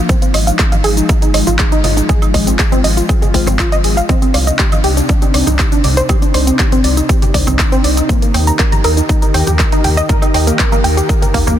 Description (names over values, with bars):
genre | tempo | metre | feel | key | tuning
progressive house | 120 BPM | 4/4 | straight | C minor | A4 = 440 Hz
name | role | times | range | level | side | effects
airy breathy pad | sustained chords | 0.0-11.6 s | C3 to Bb4 | -20 LUFS | left 1 dB | chorus, sidechain pumping
wide unison pluck | arpeggios | 0.0-11.5 s | Bb3 to Bb5 | -17 LUFS | right 1 dB | sidechain pumping, digital delay
big-room dance drum kit | drums | 0.1-11.6 s | handclaps, hi-hat, rim click, shaker | -19 LUFS | equal | overdrive, sidechain pumping on toms, sidechain pumping on hats, sidechain pumping on perc
electronic kick drum | drums | 0.1-11.4 s | none | -13 LUFS | equal | overdrive
congas and woodblock | percussion | 0.1-11.6 s | none | -26 LUFS | right 4 dB | none
round analog bass | bass | 0.3-11.6 s | Ab1 to Eb2 | -15 LUFS | equal | sidechain pumping
room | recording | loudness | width
light reverb, digital ambience | dense, heavily limited modern master | -10 LUFS | side -11 dB against mid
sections
0.0-11.6 A section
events
filter sweep on synth pluck 0.0-11.6; filter sweep on analog synth pad 0.0-11.6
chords
0.1 Fm7/Ab; 4.1 Cmadd9; 8.1 Eb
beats
| 0.09 0.59 1.09 1.59 | 2.09 2.59 3.09 3.59 | 4.09 4.59 5.09 5.59 | 6.09 6.59 7.09 7.59 | 8.09 8.59 9.09 9.59 | 10.09 10.59 11.09